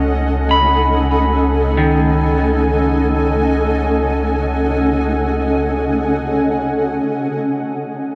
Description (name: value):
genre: ambient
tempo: free time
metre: none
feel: none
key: unclear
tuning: A4 = 439 Hz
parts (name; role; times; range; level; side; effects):
- granular cloud pad; sustained chords; 0.0-8.2 s; C#4 to G#5; -19 LUFS; equal; built-in reverb
- electric guitar at the edge of break-up; arpeggios; 0.0-5.0 s; D#3 to B5; -22 LUFS; equal; tape echo
- warm sub bass; bass; 0.0-7.0 s; C#2; -22 LUFS; equal; none
room: wet cathedral reverb, RT60 7.2 s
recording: in a vast, echoing space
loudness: -16 LUFS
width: mono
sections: 0.0-7.1 A section; 7.1-8.2 B section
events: none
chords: 0.0 B13/C#; 7.1 C#7sus2